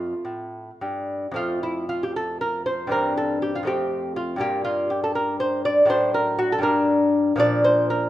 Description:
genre	classical, baroque-style dance for lute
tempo	79 BPM (dotted quarters)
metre	6/8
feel	uneven beats, rubato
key	F major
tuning	A4 = 440 Hz
part	lute	solo	0.0-8.1 s	F2 to D5	-20 LUFS	equal	none
room	moderate recital hall reverb, RT60 1.6 s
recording	minimal, uncompressed stereo recording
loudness	-20 LUFS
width	side -14 dB against mid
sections	0.0-1.4 A section; 1.4-8.1 B section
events	none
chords	0.0 F; 2.9 C/G; 3.7 F; 4.4 Gm; 5.9 D/A; 6.7 Gm; 7.4 Bb

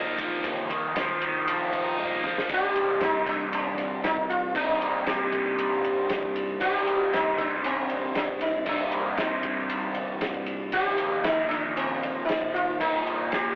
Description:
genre	psychedelic rock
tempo	116 BPM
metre	4/4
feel	straight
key	C minor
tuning	A4 = 440 Hz
part	crunchy overdriven guitar	riff	0.0-13.6 s	C2 to Eb4	-30 LUFS	equal	phaser
part	growling fingered electric bass	bass	0.0-13.5 s	C1 to C2	-49 LUFS	equal	none
part	damped 70s drum kit	drums	0.2-13.4 s	kick drum, ride cymbal, snare drum, toms	-36 LUFS	equal	none
part	sitar	melody	2.5-13.6 s	C4 to G4	-29 LUFS	equal	none
room	wet studio reverb, RT60 0.5 s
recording	rough rehearsal-room recording, tube saturation, telephone sound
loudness	-27 LUFS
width	mono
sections	0.0-2.5 A section; 2.5-13.6 B section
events	drum fill 2.0-2.5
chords	0.0 Ebsus2/C; 2.5 Cm7; 10.7 Ebadd9/C

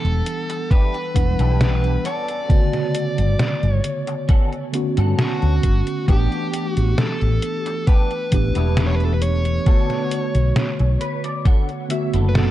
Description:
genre	vaporwave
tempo	67 BPM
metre	4/4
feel	straight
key	unclear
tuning	A4 = 440 Hz
part	smooth overdriven lead guitar	melody	0.0-12.5 s	F#4 to D5	-27 LUFS	equal	tape echo
part	mellow tine electric piano	accompaniment	0.0-12.5 s	C#3 to F#5	-25 LUFS	right 1 dB	medium stereo tremolo, lush chorus, vintage 12-bit sampler grit
part	woody fretless electric bass	bass	0.0-12.5 s	E1 to G2	-18 LUFS	equal	wide subtle chorus
part	detuned 8-bit digital drum machine	drums	0.0-12.5 s	hi-hat, snare drum	-23 LUFS	equal	none
part	clean electric guitar	riff	0.1-12.5 s	B3 to F#5	-31 LUFS	left 2 dB	ensemble chorus, tape echo
part	electronic kick drum	drums	0.7-11.6 s	none	-16 LUFS	equal	none
room	digital ambience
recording	dark, warm production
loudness	-17 LUFS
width	side -14 dB against mid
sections	0.0-12.5 A section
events	clean electric guitar fill 10.6-12.5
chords	0.0 Em7; 2.1 Gmaj9#11; 6.1 A9sus4; 9.7 Bm7

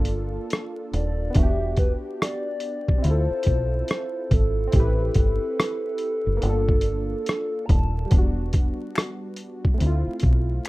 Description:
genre	lo-fi hip hop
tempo	71 BPM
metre	4/4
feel	swing 62% on 16ths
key	E phrygian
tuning	A4 = 440 Hz
part	warm analog keys	accompaniment	0.0-10.7 s	G3 to B4	-31 LUFS	equal	chorus, cassette tape, plate reverb
part	deep dub fingered electric bass	bass	0.0-10.6 s	D#1 to D2	-23 LUFS	equal	none
part	boom bap sampler-style drum kit	drums	0.1-10.7 s	hi-hat, kick drum, rim click	-21 LUFS	equal	none
part	hollow clarinet-like synth lead	melody	0.9-8.1 s	A4 to Bb5	-28 LUFS	equal	chorus, plate reverb, analog delay
part	finger snaps	percussion	9.0-10.7 s	none	-34 LUFS	left 4 dB	none
room	little or no reverb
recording	rough home demo mix, vinyl crackle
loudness	-21 LUFS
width	side -19 dB against mid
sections	0.0-10.7 A section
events	none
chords	0.0 Gm9; 1.4 Em9; 3.0 Dm9; 4.7 Am9; 6.4 Gm9; 8.1 Em9; 9.8 Dm9

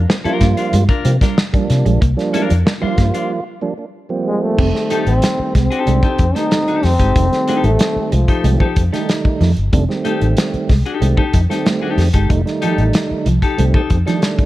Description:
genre	funk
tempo	93 BPM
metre	4/4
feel	straight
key	F mixolydian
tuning	A4 = 437 Hz
part	vintage muted fingered electric bass	bass	0.0-14.0 s	F1 to C3	-15 LUFS	equal	none
part	electric guitar at the edge of break-up	riff	0.1-14.2 s	F3 to C4	-23 LUFS	right 5 dB	wide subtle chorus
part	mellow tonewheel organ	stabs	0.1-14.5 s	Eb3 to F4	-21 LUFS	right 3 dB	none
part	warm soul drum kit	drums	0.1-14.5 s	crash cymbal, hi-hat, kick drum, snare drum	-17 LUFS	equal	none
part	clean electric guitar	accompaniment	0.2-14.2 s	D4 to C5	-24 LUFS	left 6 dB	none
part	breathy trombone	melody	4.3-8.8 s	F3 to Eb4	-19 LUFS	left 1 dB	analog delay
room	small room ambience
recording	dark, warm production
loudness	-13 LUFS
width	side -16 dB against mid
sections	0.0-4.6 A section; 4.6-14.5 B section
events	break 3.3-4.6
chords	0.0 C9sus4; 4.6 F9

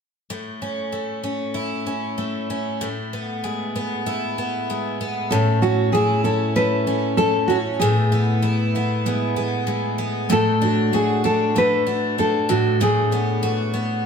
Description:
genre	pop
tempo	96 BPM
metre	4/4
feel	straight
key	A major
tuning	A4 = 440 Hz
part	picked twelve-string acoustic guitar	accompaniment	0.3-14.1 s	A2 to F#4	-22 LUFS	left 1 dB	none
part	nylon-string guitar	melody	5.3-14.1 s	F#4 to B4	-20 LUFS	equal	none
part	picked steel-string acoustic guitar	arpeggios	5.3-14.1 s	A3 to A4	-26 LUFS	right 4 dB	none
room	wet stone room reverb, RT60 1.2 s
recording	band playing live in one room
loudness	-19 LUFS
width	side -6 dB against mid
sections	0.3-5.3 A section; 5.3-14.1 B section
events	none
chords	0.3 A; 2.8 E/A; 5.3 A; 7.8 E/A; 10.3 D/A; 12.5 Bm/A

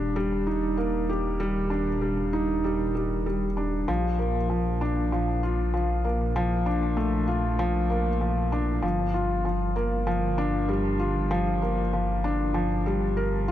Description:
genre	piano and strings electronica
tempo	97 BPM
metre	4/4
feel	straight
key	G minor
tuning	A4 = 441 Hz
part	felt-muted upright piano	riff	0.0-13.5 s	F3 to Bb4	-26 LUFS	left 1 dB	ping-pong delay
part	dark detuned saw bass	bass	0.0-13.5 s	Eb1 to Bb1	-28 LUFS	equal	none
room	light reverb, studio reverb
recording	dark, warm production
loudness	-24 LUFS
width	side -12 dB against mid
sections	0.0-13.5 A section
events	none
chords	0.0 Ebmaj7; 3.9 Bbmaj7; 8.8 Gm7

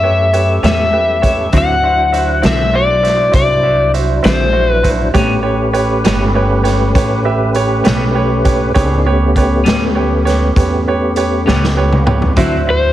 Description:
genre	slow blues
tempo	66 BPM (dotted quarters)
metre	12/8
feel	straight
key	A mixolydian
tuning	A4 = 440 Hz
part	overdriven slide guitar	melody	0.0-4.9, 12.7-12.9 s	C5 to F#5	-14 LUFS	left 2 dB	none
part	bright upright piano	accompaniment	0.0-12.9 s	F#4 to E5	-19 LUFS	right 5 dB	none
part	tonewheel organ	sustained chords	0.0-12.9 s	F#3 to C5	-18 LUFS	left 1 dB	slow rotary speaker, chorus vibrato
part	upright bass	bass	0.0-12.9 s	G1 to F#2	-16 LUFS	equal	none
part	raw garage drum kit	drums	0.3-12.5 s	hi-hat, kick drum, snare drum, toms	-18 LUFS	equal	none
part	semi-hollow electric guitar	accompaniment	0.6-12.6 s	A2 to E4	-19 LUFS	left 3 dB	harmonic tremolo
room	light reverb, small room ambience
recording	heavily compressed radio sound, multiband compression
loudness	-11 LUFS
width	side -13 dB against mid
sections	0.0-12.9 A section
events	drum fill 11.5-12.4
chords	0.0 A9; 1.5 D9; 5.1 A9; 12.4 D9

